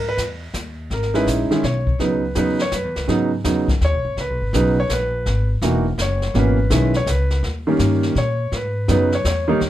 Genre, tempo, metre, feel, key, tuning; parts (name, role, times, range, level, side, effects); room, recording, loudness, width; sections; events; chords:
jazz piano trio; 166 BPM; 3/4; swing 65% on 8ths; G# minor; A4 = 440 Hz
warm concert grand piano; melody; 0.0-9.7 s; B2 to C#5; -20 LUFS; right 1 dB
upright bass; bass; 0.0-9.7 s; E1 to A#2; -21 LUFS; equal
jazz brush drum kit; drums; 0.2-9.7 s; brushed snare drum, hi-hat, kick drum, snare drum; -26 LUFS; left 1 dB
light reverb; -17 LUFS; side -13 dB against mid
0.0-9.7 A section
grand piano solo 0.0-9.7
0.0 G#m; 2.0 C#m7; 3.1 G#m7; 4.2 C#5; 5.3 G#m7; 7.4 D#7; 8.5 Emaj7